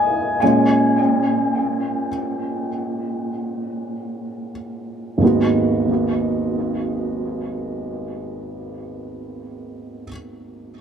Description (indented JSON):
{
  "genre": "pop",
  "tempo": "free time",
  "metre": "none",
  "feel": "none",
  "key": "G# minor",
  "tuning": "A4 = 440 Hz",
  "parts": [
    { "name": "felt-muted upright piano", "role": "accompaniment", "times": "0.0-10.8 s", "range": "G#1 to G#5", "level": "-19 LUFS", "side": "right 1 dB", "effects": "tape echo" }
  ],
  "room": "moderate spring reverb, RT60 2.1 s",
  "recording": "echo-heavy mix",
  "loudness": "-18 LUFS",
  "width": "side -8 dB against mid",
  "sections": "0.0-5.2 A section; 5.2-10.5 B section",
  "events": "slowing down 0.0-5.2; felt piano solo 0.0-5.2",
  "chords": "0.4 A#m7; 5.2 G#m7",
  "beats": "free time"
}